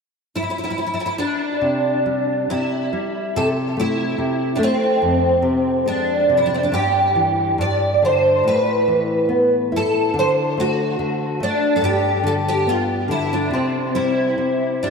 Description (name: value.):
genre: fado-style ballad.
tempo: 70 BPM.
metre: 2/4.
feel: rubato.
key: C major.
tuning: A4 = 439 Hz.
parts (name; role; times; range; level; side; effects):
picked twelve-string acoustic guitar; melody; 0.4-14.9 s; C4 to D5; -18 LUFS; right 1 dB; ensemble chorus, diffuse ambient delay.
nylon-string guitar; accompaniment; 1.6-14.9 s; F2 to E4; -22 LUFS; left 2 dB; none.
room: wet lush hall reverb, RT60 2.7 s.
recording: dreamy mix soaked in reverb.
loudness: -17 LUFS.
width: side -5 dB against mid.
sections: 0.0-1.6 A section; 1.6-14.9 B section.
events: none.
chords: 0.0 N.C.; 1.6 C; 3.4 Am/C; 5.0 Fm; 6.7 Em/G; 7.6 G5; 8.5 Asus2; 10.2 D; 11.8 G; 13.5 C5.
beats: 0.75 | 1.62 2.50 | 3.36 4.19 | 5.01 5.86 | 6.72 7.58 | 8.45 9.31 | 10.16 10.98 | 11.81 12.66 | 13.51 14.38.